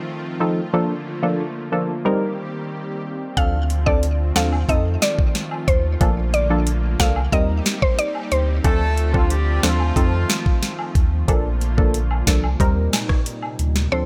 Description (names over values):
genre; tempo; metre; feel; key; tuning
dancehall; 91 BPM; 4/4; straight; unclear; A4 = 440 Hz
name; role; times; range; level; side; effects
wavetable chord stab; accompaniment; 0.0-14.1 s; F3 to Bb4; -25 LUFS; equal; none
lush unison pad; sustained chords; 0.0-14.1 s; Bb2 to G4; -32 LUFS; equal; chorus, sidechain pumping
mallet-like synth pluck; melody; 3.4-8.4, 13.9-14.1 s; C5 to F5; -26 LUFS; equal; chorus, digital delay
warm sub bass; bass; 3.4-14.1 s; Bb1 to F2; -23 LUFS; equal; none
afro-pop drum kit; drums; 3.4-13.9 s; hi-hat, kick drum, rim click, snare drum; -22 LUFS; equal; none
woodblock and cabasa; percussion; 3.4-13.7 s; none; -35 LUFS; equal; none
clear horn section; second line; 8.6-11.0 s; F3 to A4; -29 LUFS; equal; digital delay
room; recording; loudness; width
digital ambience; none; -20 LUFS; mono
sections
0.0-13.9 A section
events
none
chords
0.0 F7; 0.7 Bbmaj7; 2.1 Eb6; 3.4 Dm7; 4.7 F7; 6.0 Bbmaj7; 7.3 Eb6; 8.6 Dm7; 10.0 F7; 11.3 Bbmaj7; 12.6 Eb6